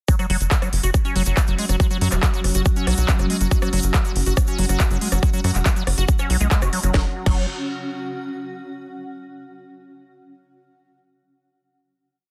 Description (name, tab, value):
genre	psychedelic trance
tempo	140 BPM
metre	4/4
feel	straight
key	unclear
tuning	A4 = 441 Hz
part	evolving wavetable pad	sustained chords	0.8-7.0 s	F#3	-33 LUFS	equal	chorus, built-in reverb, sidechain pumping
part	liquid acid bass	riff	0.1-7.5 s	E3 to F#4	-29 LUFS	equal	chorus, sidechain pumping, dub echo
part	electronic kick drum	drums	0.1-7.3 s	none	-22 LUFS	equal	none
part	techno drum kit	drums	0.1-7.3 s	crash cymbal, handclaps, hi-hat, rim click, snare drum	-29 LUFS	equal	overdrive
part	egg shaker	percussion	0.1-6.9 s	none	-35 LUFS	equal	none
part	granular cloud pad	texture	0.8-8.6 s	C#4 to F#5	-35 LUFS	equal	built-in reverb, sidechain pumping
part	tight sequencer bass	bass	0.3-7.5 s	E1 to F#2	-23 LUFS	equal	none
room	little or no reverb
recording	dense, heavily limited modern master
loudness	-20 LUFS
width	mono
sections	0.1-6.9 drop; 6.9-8.7 final chord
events	drop 0.1-6.9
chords	0.1 F#5